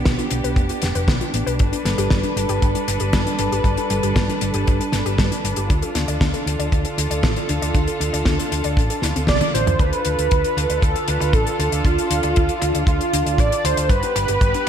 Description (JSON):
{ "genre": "italo disco", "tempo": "117 BPM", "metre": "4/4", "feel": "straight", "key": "unclear", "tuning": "A4 = 438 Hz", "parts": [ { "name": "dark chamber string section", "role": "sustained chords", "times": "0.0-14.7 s", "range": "D3 to B4", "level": "-24 LUFS", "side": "equal", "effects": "none" }, { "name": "warbly dusty pluck", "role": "arpeggios", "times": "0.0-14.7 s", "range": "D3 to D5", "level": "-29 LUFS", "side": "left 3 dB", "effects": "chorus, ping-pong delay" }, { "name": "hollow-body short-scale fingered electric bass", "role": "bass", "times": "0.0-14.5 s", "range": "F1 to G2", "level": "-24 LUFS", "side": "equal", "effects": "none" }, { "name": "damped 70s drum kit", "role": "drums", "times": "0.1-14.7 s", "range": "hi-hat, snare drum, toms", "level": "-24 LUFS", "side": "left 2 dB", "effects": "high-pass filter on hats, small room ambience, high-pass filter on toms, high-pass filter on snare, high-pass filter on room, gated reverb" }, { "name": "kick drum", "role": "drums", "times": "0.1-14.5 s", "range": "none", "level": "-19 LUFS", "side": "equal", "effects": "small room ambience" }, { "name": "wide unison lead", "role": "melody", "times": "9.3-14.7 s", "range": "F4 to D5", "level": "-21 LUFS", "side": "right 2 dB", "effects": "analog chorus, vintage 12-bit sampler grit, digital delay" } ], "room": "moderate lush hall reverb, RT60 1.6 s, small room ambience", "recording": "bright 1980s-style digital production", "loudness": "-17 LUFS", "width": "side -8 dB against mid", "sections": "0.0-9.8 A section; 9.8-14.7 B section", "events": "drum fill 9.3-9.8, 9.8-14.7; band accent 9.3", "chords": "0.0 Bdim; 1.6 Gadd9; 5.7 Dm; 13.9 G" }